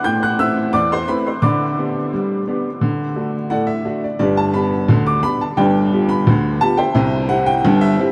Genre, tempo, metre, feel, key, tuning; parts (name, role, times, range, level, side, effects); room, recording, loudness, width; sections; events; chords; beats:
ragtime piano; 87 BPM; 2/4; straight; G major; A4 = 441 Hz
clear upright piano; solo; 0.0-8.1 s; G1 to G6; -17 LUFS; equal
wet huge ambient reverb, RT60 8.5 s; heard from further back in the room; -17 LUFS; mono
0.0-4.2 A section; 4.2-8.1 B section
0.0 Am; 1.4 G/D; 2.8 D; 4.2 G; 5.6 G7; 7.0 C
| 0.04 0.72 | 1.42 2.11 | 2.81 3.50 | 4.19 4.88 | 5.58 6.26 | 6.95 7.64